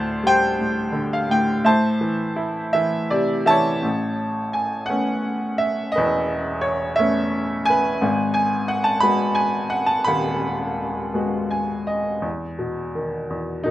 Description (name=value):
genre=classical, lyrical solo piano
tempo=53-59 BPM (dotted quarters)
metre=6/8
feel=rubato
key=A minor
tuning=A4 = 440 Hz
part: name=clear upright piano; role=solo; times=0.0-13.7 s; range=D#1 to B5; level=-19 LUFS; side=equal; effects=none
room=little or no reverb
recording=close, detailed microphones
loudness=-19 LUFS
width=side -14 dB against mid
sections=0.0-3.8 A section; 3.8-12.2 B section; 12.2-13.7 C section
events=upright piano fill 2.7-3.8, 11.2-12.2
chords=0.0 D7sus4; 1.6 Am; 3.8 Aadd9; 8.0 G#m7; 12.2 E5